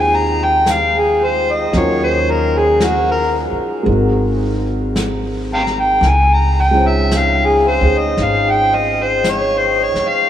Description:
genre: jazz ballad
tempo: 56 BPM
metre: 4/4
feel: swing 66% on 8ths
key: unclear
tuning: A4 = 435 Hz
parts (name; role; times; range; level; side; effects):
- overdriven harmonica; melody; 0.0-10.3 s; Gb4 to Bb5; -15 LUFS; left 1 dB; none
- warm concert grand piano; accompaniment; 0.0-10.3 s; Gb3 to C5; -21 LUFS; right 1 dB; none
- upright bass; bass; 0.0-10.0 s; Ab1 to Eb2; -19 LUFS; equal; none
- vintage brush drum kit; drums; 0.7-10.3 s; brushed snare drum, hi-hat, snare drum; -28 LUFS; left 1 dB; none
room: wet cathedral reverb, RT60 6.6 s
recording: in a vast, echoing space, small room ambience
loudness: -13 LUFS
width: side -10 dB against mid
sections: 0.0-10.3 A section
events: harmonica solo 0.0-10.3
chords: 0.0 Abmaj9; 1.7 Ebm9; 3.9 Ab9; 6.0 Dbmaj9

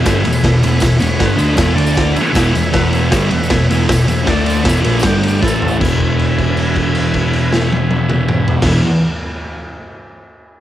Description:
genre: garage rock duo or trio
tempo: 157 BPM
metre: 4/4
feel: straight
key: E major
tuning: A4 = 442 Hz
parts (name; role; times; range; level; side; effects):
- combo organ; sustained chords; 0.0-8.8 s; G4 to A5; -23 LUFS; equal; cassette tape
- thick fuzz guitar; riff; 0.0-8.8 s; E2 to D4; -15 LUFS; equal; distortion, cassette tape
- hollow-body short-scale picked electric bass; bass; 0.0-8.8 s; E1 to D2; -19 LUFS; equal; tube saturation
- raw garage drum kit; drums; 0.1-8.7 s; crash cymbal, kick drum, ride cymbal, snare drum, toms; -17 LUFS; equal; none
- tambourine; percussion; 0.1-6.0 s; none; -33 LUFS; right 3 dB; none
room: light reverb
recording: home recording on cassette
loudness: -12 LUFS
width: side -12 dB against mid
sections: 0.0-5.8 A section; 5.8-8.9 B section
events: drum fill 5.4-5.8; held note 5.8-8.6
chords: 0.0 E; 1.8 D5; 2.2 E; 4.3 D5; 4.7 E; 5.0 G5; 5.4 A5; 5.8 E

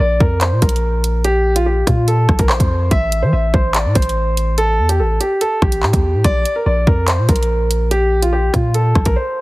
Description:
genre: hip hop, drill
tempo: 144 BPM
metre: 4/4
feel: half-time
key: A phrygian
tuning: A4 = 438 Hz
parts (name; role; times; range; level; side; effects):
- dark concert grand piano; melody; 0.0-9.4 s; F4 to E5; -18 LUFS; right 1 dB; none
- long sustained 808-style bass; bass; 0.0-9.2 s; A1 to E3; -16 LUFS; equal; none
- drill drum kit; drums; 0.2-9.2 s; handclaps, hi-hat, kick drum, rim click; -16 LUFS; equal; none
room: digital ambience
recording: heavily compressed radio sound, multiband compression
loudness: -13 LUFS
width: side -20 dB against mid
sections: 0.0-9.4 A section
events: break 9.2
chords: 0.0 Bb5; 2.9 Am; 6.2 N.C.

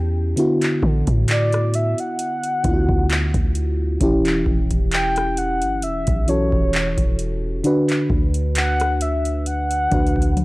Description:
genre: contemporary R&B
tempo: 66 BPM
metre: 4/4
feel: swing 54% on 16ths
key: unclear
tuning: A4 = 440 Hz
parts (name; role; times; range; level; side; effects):
- mellow horn-like synth lead; melody; 0.0-10.4 s; C#5 to G5; -23 LUFS; equal; chorus
- mellow FM electric piano; accompaniment; 0.0-10.4 s; D3 to B4; -22 LUFS; equal; chorus
- warm 808-style bass; bass; 0.0-10.4 s; E1 to D3; -22 LUFS; equal; none
- booming analog drum machine; drums; 0.4-10.4 s; handclaps, hi-hat, kick drum, rim click, toms; -21 LUFS; equal; none
room: little or no reverb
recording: dry, gritty hardware recording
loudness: -17 LUFS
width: side -21 dB against mid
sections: 0.0-10.4 A section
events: none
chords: 0.4 D69; 4.0 Em69; 7.6 D6

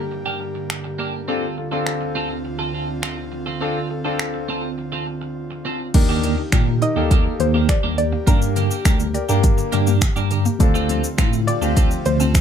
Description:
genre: dance-pop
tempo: 103 BPM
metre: 4/4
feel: straight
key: unclear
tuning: A4 = 440 Hz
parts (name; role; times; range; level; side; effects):
- airy breathy pad; sustained chords; 0.0-12.4 s; D2 to G4; -29 LUFS; right 1 dB; chorus, sidechain pumping
- twelve-string electric guitar; riff; 0.0-12.4 s; Bb3 to A4; -28 LUFS; right 4 dB; lush chorus
- house drum kit; drums; 0.7-12.4 s; crash cymbal, finger snaps, hi-hat, kick drum, shaker; -18 LUFS; equal; none
- clear concert grand piano; accompaniment; 1.3-12.2 s; Bb3 to Bb4; -25 LUFS; left 5 dB; sidechain pumping
- mallet-like synth pluck; arpeggios; 5.9-12.4 s; D3 to D5; -29 LUFS; left 2 dB; chorus, sidechain pumping, digital delay
- tine electric piano; bass; 5.9-12.4 s; D2 to Bb2; -20 LUFS; right 1 dB; fast stereo tremolo, sidechain pumping
- soft round pluck; melody; 6.8-12.4 s; Bb4 to Eb5; -25 LUFS; left 1 dB; chorus, digital delay
room: light reverb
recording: none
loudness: -18 LUFS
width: side -8 dB against mid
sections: 0.0-5.9 A section; 5.9-12.4 B section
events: break 4.8-5.9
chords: 0.0 Gm; 1.3 Dm7; 5.9 Ebmaj7; 8.3 Gm; 10.6 Dm7

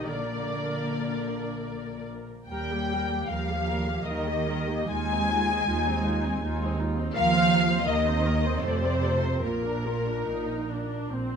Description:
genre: classical, slow romantic movement for string orchestra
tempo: 69-82 BPM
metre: 3/4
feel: rubato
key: Bb major from 7.2 s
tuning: A4 = 440 Hz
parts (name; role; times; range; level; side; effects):
- muted studio violin section; melody; 0.0-11.1 s; Bb4 to Ab5; -31 LUFS; left 3 dB; none
- muted studio violin section; second line; 0.0-11.1 s; Bb4 to Ab5; -32 LUFS; left 3 dB; none
- muted studio viola section; accompaniment; 0.0-11.4 s; G3 to C5; -33 LUFS; equal; none
- muted studio cello section; bass; 0.0-11.1 s; Bb2 to Ab3; -31 LUFS; right 3 dB; none
- muted studio double bass section; bass; 0.0-11.4 s; Bb1 to F2; -31 LUFS; right 2 dB; none
room: light reverb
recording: close, detailed microphones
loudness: -24 LUFS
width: side -6 dB against mid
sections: 0.0-11.4 A section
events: none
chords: 0.1 Bb; 2.5 Eb; 4.9 Fm7/Eb; 7.2 Cm7/Eb; 8.6 F; 9.4 Bb

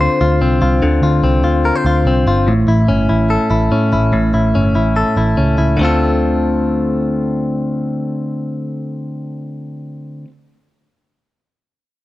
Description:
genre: jangly indie pop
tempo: 145 BPM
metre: 4/4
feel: straight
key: D minor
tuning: A4 = 440 Hz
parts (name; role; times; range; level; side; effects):
- direct-recorded clean electric guitar; arpeggios; 0.0-10.3 s; A2 to C5; -15 LUFS; left 2 dB; spring reverb
- vintage muted picked electric bass; bass; 0.0-10.2 s; G1 to A2; -16 LUFS; right 1 dB; none
room: light reverb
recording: none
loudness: -13 LUFS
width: side -16 dB against mid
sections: 0.0-5.8 A section; 5.8-9.1 B section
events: none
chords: 0.0 Dm7; 2.5 A; 5.8 Dm7

